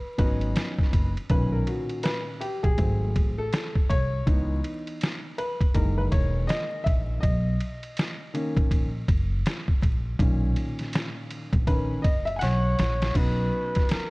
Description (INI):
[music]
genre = hip hop, jazz-hop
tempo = 81 BPM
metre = 4/4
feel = swing 63% on 16ths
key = B major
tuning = A4 = 436 Hz
[part]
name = breathy flugelhorn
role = melody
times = 0.0-0.5, 12.4-14.1 s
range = A#4 to C#5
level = -30 LUFS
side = equal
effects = analog delay
[part]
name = dark grand piano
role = accompaniment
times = 0.2-14.1 s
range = A#2 to G#5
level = -30 LUFS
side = left 1 dB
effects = none
[part]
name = upright bass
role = bass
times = 0.2-13.5 s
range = E1 to C#2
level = -26 LUFS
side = equal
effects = none
[part]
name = trip hop sampler-style drum kit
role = drums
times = 0.2-14.1 s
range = crash cymbal, hi-hat, kick drum, ride cymbal, snare drum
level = -25 LUFS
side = equal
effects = none
[sound]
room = studio reverb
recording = dark, warm production, vinyl crackle, nothing above 10.7 kHz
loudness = -23 LUFS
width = side -25 dB against mid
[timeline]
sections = 0.0-1.3 A section; 1.3-13.2 B section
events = grand piano solo 1.3-13.2; drum fill 12.4-13.2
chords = 0.0 B; 1.3 Bmaj7; 2.8 G#7b9; 4.3 C#m7; 5.7 F#13; 7.2 Bmaj7; 13.2 B